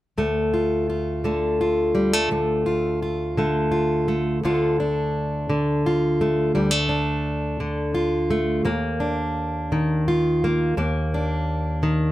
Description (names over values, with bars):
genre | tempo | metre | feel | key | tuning
folk | 57 BPM (dotted quarters) | 6/8 | straight | unclear | A4 = 440 Hz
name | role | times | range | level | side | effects
fingerpicked plugged-in steel-string acoustic guitar | accompaniment | 0.2-12.1 s | D2 to F4 | -20 LUFS | equal | none
room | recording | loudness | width
light reverb | close, detailed microphones | -20 LUFS | side -15 dB against mid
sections
0.2-4.4 A section; 4.4-12.1 B section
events
none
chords
0.2 Dm; 8.7 Ebsus2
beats
| 0.19 1.25 | 2.31 3.37 | 4.42 5.48 | 6.54 7.60 | 8.66 9.71 | 10.77 11.83